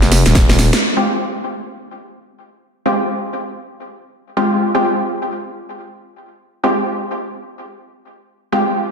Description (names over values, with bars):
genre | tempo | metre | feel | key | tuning
bass house | 127 BPM | 4/4 | swing 60% on 16ths | F minor | A4 = 439 Hz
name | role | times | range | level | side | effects
growling FM bass | bass | 0.0-0.7 s | Eb1 to F1 | -14 LUFS | equal | overdrive, sidechain pumping
house drum kit | drums | 0.0-0.8 s | hi-hat, snare drum, tambourine | -17 LUFS | right 1 dB | low-pass filter on hats, low-pass filter on perc, low-pass filter on snare, low-pass filter on room
huge arena drum kit | drums | 0.1-0.7 s | hi-hat, snare drum | -31 LUFS | right 2 dB | none
electronic kick drum | drums | 0.4-0.5 s | none | -15 LUFS | equal | none
orchestra-hit-like synth stab | stabs | 1.0-8.6 s | Ab3 to G4 | -18 LUFS | equal | built-in reverb, sidechain pumping, digital delay
room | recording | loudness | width
moderate plate reverb, RT60 1.8 s | dense, heavily limited modern master | -15 LUFS | side -6 dB against mid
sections
0.8-8.9 A section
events
drum fill 0.0-0.8; band accent 0.7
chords
0.0 N.C.; 0.8 Fmadd9